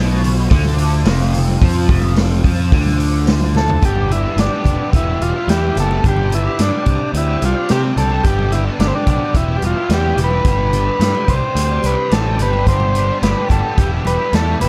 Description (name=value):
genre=psychedelic rock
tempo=109 BPM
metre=4/4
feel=straight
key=G mixolydian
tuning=A4 = 440 Hz
part: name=tonewheel organ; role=sustained chords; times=0.0-14.7 s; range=F4 to B5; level=-34 LUFS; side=equal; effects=none
part: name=overdriven electric guitar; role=riff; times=0.0-14.7 s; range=E2 to G4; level=-26 LUFS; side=equal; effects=flanger
part: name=fuzz picked electric bass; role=bass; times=0.0-14.7 s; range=E1 to C3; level=-20 LUFS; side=equal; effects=overdrive
part: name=vintage drum kit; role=drums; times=0.2-14.7 s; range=hi-hat, kick drum, snare drum, toms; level=-20 LUFS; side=equal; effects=none
part: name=congas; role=percussion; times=0.2-14.7 s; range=none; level=-28 LUFS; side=equal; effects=none
part: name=combo organ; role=melody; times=3.6-14.7 s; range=C4 to C5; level=-22 LUFS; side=equal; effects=none
room=small room ambience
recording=none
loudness=-16 LUFS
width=mono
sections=0.0-3.8 A section; 3.8-14.7 B section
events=drum fill 3.5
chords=0.0 F5; 3.8 G; 4.9 Em; 6.0 G; 6.9 Csus2; 8.2 G; 9.4 Em; 10.5 G; 11.3 Csus2; 12.7 G; 13.8 Em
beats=0.51 1.06 | 1.61 2.16 2.71 3.27 | 3.82 4.37 4.93 5.48 | 6.03 6.59 7.14 7.69 | 8.25 8.80 9.35 9.90 | 10.46 11.01 11.56 12.12 | 12.67 13.22 13.77 14.32